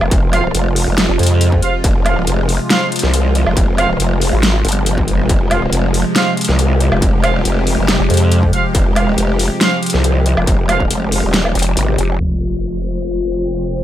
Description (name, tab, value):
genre	heavy wobble dubstep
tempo	139 BPM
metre	4/4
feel	half-time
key	F minor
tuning	A4 = 442 Hz
part	evolving wavetable pad	sustained chords	0.0-13.8 s	C3 to G4	-19 LUFS	equal	phaser, built-in reverb, sidechain pumping
part	growl bass	bass	0.0-13.8 s	Eb1 to F2	-16 LUFS	equal	chorus, overdrive
part	dubstep drum kit	drums	0.0-13.8 s	crash cymbal, hi-hat, snare drum, woodblock	-18 LUFS	equal	low-pass filter on snare, studio reverb, low-pass filter on hats, low-pass filter on perc, low-pass filter on toms, low-pass filter on cymbals
part	electronic kick drum	drums	0.1-10.9 s	none	-16 LUFS	equal	distortion, studio reverb
part	warm brass ensemble	stabs	0.3-10.8 s	F4 to F5	-21 LUFS	right 4 dB	digital delay
part	vowel-sweep wobble bass	bass	1.1-1.2, 4.3-4.6, 8.0-8.1, 11.6-12.2 s	F1 to Ab1	-16 LUFS	equal	chorus, overdrive
part	sub drop	sound effects	12.2-13.8 s	none	-24 LUFS	equal	none
part	airy breathy pad	texture	12.2-13.8 s	F4 to G5	-21 LUFS	left 4 dB	chorus, sidechain pumping
room	digital ambience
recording	low-pass filter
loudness	-12 LUFS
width	side -12 dB against mid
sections	0.0-12.2 A section; 12.2-13.8 B section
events	drop 0.0-12.2; kick drops out 11.3-12.2; impact 12.2-13.8; filter sweep 12.2-13.8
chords	0.0 Fm